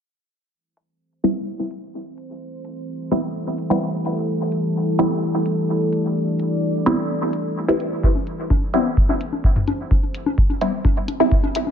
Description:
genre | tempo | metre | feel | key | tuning
dub techno | 128 BPM | 4/4 | straight | A minor | A4 = 439 Hz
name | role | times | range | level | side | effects
deep dark ambient pad | sustained chords | 2.3-11.7 s | E4 to D5 | -24 LUFS | equal | chorus, built-in reverb, sidechain pumping
electronic hi-hat | drums | 0.8-11.6 s | none | -38 LUFS | left 1 dB | low-pass filter on hats, dub echo
filtered dub chord stab | stabs | 1.2-11.3 s | G3 to E4 | -22 LUFS | equal | phaser, sidechain pumping, dub echo
electronic kick drum | drums | 8.0-11.4 s | none | -18 LUFS | equal | none
electronic bongos and toms | percussion | 8.2-11.7 s | none | -25 LUFS | left 3 dB | overdrive, sidechain pumping on perc, sidechain pumping on toms, dub echo
room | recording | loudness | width
moderate echo chamber reverb, RT60 1.7 s | low-pass filter | -18 LUFS | side -8 dB against mid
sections
0.5-11.7 A section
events
filter sweep on drum 0.5-11.7; filter sweep on synth stab 0.5-11.7; filter sweep on ambient pad 0.5-11.7; filter sweep 0.5-11.7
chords
0.5 Am7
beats
| 0.54 1.00 1.47 1.94 | 2.41 2.88 3.35 3.82 | 4.29 4.75 5.22 5.69 | 6.16 6.63 7.10 7.57 | 8.04 8.50 8.97 9.44 | 9.91 10.38 10.85 11.32

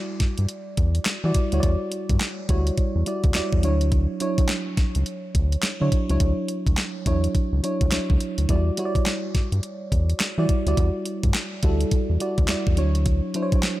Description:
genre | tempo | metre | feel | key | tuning
R&B, new jack swing | 105 BPM | 4/4 | swing 62% on 16ths | E dorian | A4 = 437 Hz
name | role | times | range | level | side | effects
mellow FM electric piano | accompaniment | 0.0-13.8 s | F#3 to D5 | -26 LUFS | right 1 dB | chorus
round analog bass | bass | 0.2-13.6 s | C#2 to E3 | -22 LUFS | equal | none
crisp 8-bit digital drum machine | drums | 0.2-13.8 s | handclaps, hi-hat, kick drum, snare drum | -23 LUFS | equal | none
room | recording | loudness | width
digital ambience | none | -20 LUFS | side -16 dB against mid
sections
0.0-13.8 A section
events
none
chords
0.0 Em9; 3.6 Dmaj9; 8.5 Em9; 12.8 Dmaj9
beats
0.49 1.06 | 1.63 2.20 2.77 3.34 | 3.92 4.49 5.06 5.63 | 6.20 6.77 7.34 7.92 | 8.49 9.06 9.63 10.20 | 10.77 11.34 11.92 12.49 | 13.06 13.63

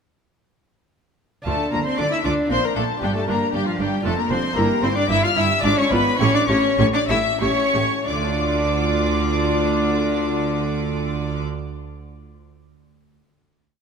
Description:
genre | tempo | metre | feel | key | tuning
classical, baroque-style concerto movement with solo episodes | 87-117 BPM | 3/4 | straight | D minor | A4 = 440 Hz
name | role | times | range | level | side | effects
lute | accompaniment | 1.4-11.7 s | F2 to D5 | -30 LUFS | right 1 dB | none
dark cello | melody | 1.5-11.4 s | F3 to F4 | -23 LUFS | left 2 dB | none
dark studio violin section | melody | 1.5-11.4 s | F5 to F6 | -26 LUFS | left 2 dB | none
warm chamber violin section | second line | 1.5-11.4 s | F4 to F5 | -25 LUFS | left 5 dB | none
warm chamber viola section | accompaniment | 1.5-11.4 s | D4 to G4 | -30 LUFS | right 2 dB | none
rich chamber double bass section | bass | 1.5-11.4 s | F1 to D2 | -26 LUFS | right 5 dB | none
rich studio cello section | bass | 1.5-11.4 s | F2 to D3 | -27 LUFS | right 3 dB | none
room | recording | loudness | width
moderate concert hall reverb, RT60 2.5 s | none | -18 LUFS | side -6 dB against mid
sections
1.5-8.1 ritornello; 8.1-12.2 final chord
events
slowing down 3.8-8.1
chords
1.5 Dm; 2.5 Bb; 3.0 G5; 4.0 Dm/F; 4.6 Edim/G; 5.6 G#dim7; 6.2 A7; 8.1 Dm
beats
| 1.46 1.98 2.50 | 3.02 3.54 4.05 | 4.57 5.09 5.63 | 6.20 6.79 7.41 | 8.08 8.77 9.45 | 10.14 10.82 11.51

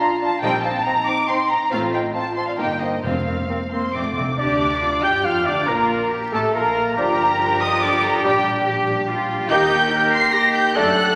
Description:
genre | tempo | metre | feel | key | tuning
classical, dramatic, fast romantic movement for symphony orchestra | 140 BPM | 3/4 | rubato | unclear | A4 = 438 Hz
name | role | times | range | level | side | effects
warm studio violin section | melody | 0.0-11.2 s | Eb5 to C7 | -24 LUFS | equal | none
bright clarinet | second line | 0.0-10.9 s | C4 to G5 | -30 LUFS | equal | none
mellow hollow silver concert flute | second line | 0.0-11.0 s | C5 to G6 | -31 LUFS | equal | none
mellow bassoon | accompaniment | 0.0-10.9 s | F3 to G4 | -32 LUFS | equal | none
mellow French horn section | sustained chords | 0.0-11.2 s | F3 to G4 | -30 LUFS | equal | none
clear symphonic violin section | second line | 0.4-11.2 s | Eb4 to C6 | -33 LUFS | equal | none
rich symphonic viola section | accompaniment | 0.4-11.0 s | G3 to A4 | -31 LUFS | equal | none
clear symphonic cello section | bass | 0.4-11.2 s | F2 to Bb4 | -31 LUFS | equal | none
rich symphonic double bass section | bass | 0.4-11.1 s | F1 to G2 | -35 LUFS | equal | none
timpani | percussion | 0.4-4.3 s | F2 to Bb2 | -32 LUFS | equal | none
warm trumpet | stabs | 4.4-11.2 s | G4 to G5 | -25 LUFS | equal | none
room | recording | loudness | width
wet scoring stage reverb, RT60 1.6 s | vinyl crackle | -20 LUFS | mono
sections
0.0-4.4 A section; 4.4-11.2 B section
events
timpani fill 3.9-4.4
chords
0.4 Cm7/Bb; 1.7 F/A; 2.6 Eb/G; 3.0 Fsus4; 3.9 F; 4.4 Dmadd11; 5.7 Bb5; 7.0 Gm7; 8.2 Gm/Bb; 9.5 Eb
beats
0.00 | 0.43 0.86 1.29 | 1.72 2.15 2.58 | 3.04 3.50 3.95 | 4.39 4.82 5.25 | 5.69 6.12 6.55 | 6.98 7.40 7.82 | 8.24 8.66 9.09 | 9.51 9.92 10.34 | 10.76

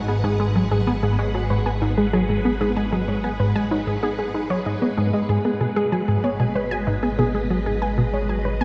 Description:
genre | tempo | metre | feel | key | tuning
ambient, sequencer-driven space music | 95 BPM | 4/4 | straight | G# minor | A4 = 439 Hz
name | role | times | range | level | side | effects
phased string machine | sustained chords | 0.0-8.6 s | G#3 to F#5 | -31 LUFS | equal | ensemble chorus, phaser
unison pluck | arpeggios | 0.0-8.6 s | D#4 to G#5 | -29 LUFS | equal | tape echo
analog drone | bass | 0.0-8.6 s | G#1 | -29 LUFS | equal | chorus
tight sequenced synth | riff | 0.1-8.6 s | G#2 to B3 | -25 LUFS | equal | chorus, phaser, tape echo
room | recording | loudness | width
wet cathedral reverb, RT60 5.4 s | in a vast, echoing space | -22 LUFS | mono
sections
0.0-8.6 A section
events
none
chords
0.0 G#m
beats
| 0.24 0.87 1.50 2.14 | 2.77 3.40 4.03 4.66 | 5.29 5.92 6.56 7.19 | 7.82 8.45

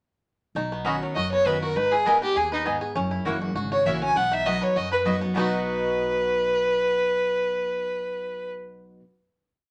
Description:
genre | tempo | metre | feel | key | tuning
bluegrass | 201 BPM | 4/4 | straight | B major | A4 = 439 Hz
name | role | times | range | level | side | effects
picked steel-string acoustic guitar | accompaniment | 0.6-9.0 s | F#2 to G#4 | -34 LUFS | equal | none
bluegrass banjo | arpeggios | 0.6-9.0 s | F#3 to B4 | -34 LUFS | equal | none
upright bass | bass | 0.6-9.0 s | F#1 to F#2 | -39 LUFS | equal | none
mandolin | stabs | 0.8-9.0 s | A#3 to B5 | -30 LUFS | equal | none
clear fiddle | melody | 1.2-8.5 s | D#4 to G#5 | -26 LUFS | equal | none
room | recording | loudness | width
moderate studio reverb, RT60 0.5 s | none | -24 LUFS | mono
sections
0.6-5.4 A section; 5.4-7.7 final chord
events
none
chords
0.6 Badd9; 1.8 G#m; 3.0 F#7; 4.2 B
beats
| 0.55 0.85 1.16 1.46 | 1.76 2.06 2.36 2.66 | 2.96 3.26 3.56 3.86 | 4.16 4.46 4.75 5.05 | 5.35 5.65 5.95 6.25 | 6.54 6.84 7.14 7.44

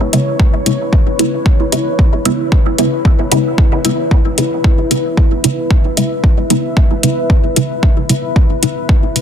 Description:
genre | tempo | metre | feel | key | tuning
dub techno | 113 BPM | 4/4 | straight | C# minor | A4 = 440 Hz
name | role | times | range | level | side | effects
deep dark ambient pad | sustained chords | 0.0-9.2 s | E4 to E5 | -20 LUFS | left 2 dB | chorus, built-in reverb, sidechain pumping
filtered dub chord stab | stabs | 0.1-9.2 s | C#3 to E4 | -17 LUFS | equal | phaser, sidechain pumping, dub echo
electronic hi-hat | drums | 0.1-9.2 s | none | -18 LUFS | left 1 dB | overdrive
electronic kick drum | drums | 0.4-9.0 s | none | -11 LUFS | equal | overdrive
room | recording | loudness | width
little or no reverb | dense, heavily limited modern master | -11 LUFS | side -8 dB against mid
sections
0.0-9.2 A section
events
filter sweep on synth stab 0.0-9.2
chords
0.0 C#m7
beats
0.40 0.93 1.46 | 1.99 2.52 3.05 3.58 | 4.11 4.64 5.17 5.71 | 6.24 6.77 7.30 7.83 | 8.36 8.89

